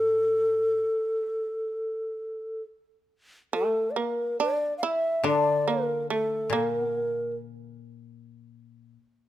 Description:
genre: japanese traditional, Japanese chamber music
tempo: 61-75 BPM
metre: 4/4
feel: rubato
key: unclear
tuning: A4 = 443 Hz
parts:
  - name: mellow hollow long shakuhachi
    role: melody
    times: 0.0-7.3 s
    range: A4 to F5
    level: -26 LUFS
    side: equal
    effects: none
  - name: shamisen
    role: second line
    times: 0.0-7.3 s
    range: A3 to E4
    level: -30 LUFS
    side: right 5 dB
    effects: none
  - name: koto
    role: accompaniment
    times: 0.0-8.9 s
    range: A2 to D3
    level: -32 LUFS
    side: left 6 dB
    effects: none
room: little or no reverb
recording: close, detailed microphones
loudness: -25 LUFS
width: side -13 dB against mid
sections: 0.0-3.5 A section; 3.5-9.3 B section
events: none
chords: none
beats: 0.80 1.67 2.60 | 3.53 4.40 5.25 6.10 | 6.93 7.75 8.56

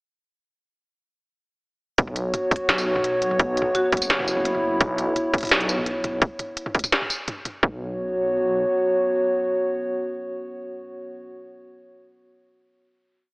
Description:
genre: half-time drum and bass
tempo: 170 BPM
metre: 4/4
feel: half-time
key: unclear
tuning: A4 = 440 Hz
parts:
  - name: dark analog pad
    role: sustained chords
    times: 2.0-11.2 s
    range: B3 to C#5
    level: -24 LUFS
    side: equal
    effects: chorus, vintage 12-bit sampler grit, sidechain pumping
  - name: dark detuned saw bass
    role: bass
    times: 2.0-8.6 s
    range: F#1 to B1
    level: -30 LUFS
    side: equal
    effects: none
  - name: electronic kick drum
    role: drums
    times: 2.0-7.7 s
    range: none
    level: -19 LUFS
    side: equal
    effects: none
  - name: industrial drum kit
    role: drums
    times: 2.0-7.5 s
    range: hi-hat, snare drum, tambourine, toms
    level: -23 LUFS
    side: equal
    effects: none
  - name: marimba with soft mallets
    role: melody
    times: 3.7-4.1 s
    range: F#4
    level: -29 LUFS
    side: equal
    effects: dub echo
room: moderate lush hall reverb, RT60 1.9 s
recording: heavily compressed radio sound, AM radio sound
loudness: -21 LUFS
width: side -37 dB against mid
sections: 2.0-7.6 drop; 7.6-10.5 final chord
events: drop 2.0-7.6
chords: 2.0 B5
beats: | 1.98 2.34 2.69 3.04 | 3.40 3.75 4.10 4.46 | 4.81 5.16 5.51 5.87 | 6.22 6.57 6.92 7.28 | 7.63 7.98 8.34 8.69 | 9.04 9.40 9.75 10.10

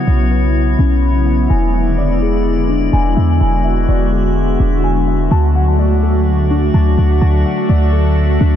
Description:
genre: hip hop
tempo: 126 BPM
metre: 4/4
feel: half-time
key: unclear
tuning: A4 = 439 Hz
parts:
  - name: airy breathy pad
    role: sustained chords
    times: 0.0-8.6 s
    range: C#3 to F#4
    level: -17 LUFS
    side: left 1 dB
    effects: chorus, low-pass filter
  - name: mellow electric guitar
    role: arpeggios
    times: 0.0-8.6 s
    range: C#4 to B5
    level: -22 LUFS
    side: left 5 dB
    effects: analog chorus, low-pass filter, ping-pong delay
  - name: downlifter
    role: sound effects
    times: 0.0-1.5 s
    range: none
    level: -46 LUFS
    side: equal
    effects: none
  - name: drifting glass-harmonics texture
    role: texture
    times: 0.0-8.6 s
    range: G#3 to E5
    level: -25 LUFS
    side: left 2 dB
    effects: chorus, built-in reverb
  - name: clean 808-style bass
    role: bass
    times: 0.1-8.6 s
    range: E1 to E2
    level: -13 LUFS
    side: equal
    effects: none
room: little or no reverb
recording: dense, heavily limited modern master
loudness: -12 LUFS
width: side -10 dB against mid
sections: 0.0-8.6 A section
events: filter sweep 0.0-8.6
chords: 0.0 Bsus2; 1.5 E7; 5.3 D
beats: 0.07 0.55 1.03 | 1.50 1.98 2.46 2.93 | 3.41 3.88 4.36 4.84 | 5.31 5.79 6.26 6.74 | 7.22 7.69 8.17

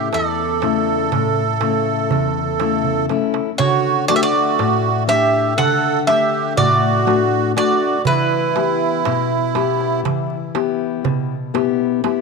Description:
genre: greek folk, Greek bouzouki band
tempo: 121 BPM (eighths)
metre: 9/8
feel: straight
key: D major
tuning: A4 = 441 Hz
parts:
  - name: Greek bouzouki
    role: melody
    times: 0.0-10.0 s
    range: B4 to F#5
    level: -20 LUFS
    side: right 1 dB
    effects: none
  - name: accordion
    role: second line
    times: 0.0-10.0 s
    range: E4 to A4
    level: -20 LUFS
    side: right 12 dB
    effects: light tremolo tuning
  - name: fingerpicked steel-string acoustic guitar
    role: accompaniment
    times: 0.0-12.2 s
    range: E2 to F#5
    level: -20 LUFS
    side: left 10 dB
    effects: none
  - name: darbuka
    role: percussion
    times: 0.1-12.2 s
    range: none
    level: -24 LUFS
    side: right 9 dB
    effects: none
room: moderate plate reverb, RT60 3.6 s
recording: 1960s-style stereo with parts hard left and right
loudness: -15 LUFS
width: side -4 dB against mid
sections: 0.0-3.6 A section; 3.6-12.2 B section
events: drum fill 2.8-3.6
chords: 0.0 A; 3.6 D; 8.1 Em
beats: 0.12 0.61 1.11 1.60 2.10 2.60 3.09 | 3.59 4.08 4.58 5.08 5.57 6.07 6.57 7.07 7.56 | 8.06 8.56 9.05 9.55 10.05 10.54 11.04 11.54 12.04

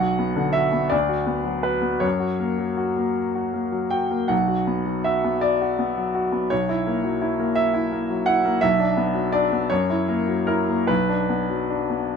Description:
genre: classical, romantic character piece for solo piano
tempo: 48-57 BPM (dotted quarters)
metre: 6/8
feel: rubato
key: B minor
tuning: A4 = 440 Hz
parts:
  - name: bright grand piano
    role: solo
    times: 0.0-12.2 s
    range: B1 to G5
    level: -20 LUFS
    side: left 1 dB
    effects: none
room: moderate studio reverb, RT60 0.6 s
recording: none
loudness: -20 LUFS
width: side -6 dB against mid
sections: 0.0-12.2 A section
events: none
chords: 0.0 Bm; 0.9 Bm/D; 2.0 F#; 4.3 Bm; 6.5 F#7/B; 8.6 Bm; 9.7 F#7; 10.9 Bm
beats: 0.92 | 2.03 3.18 | 4.31 5.44 | 6.51 7.57 | 8.62 9.70 | 10.89 12.11

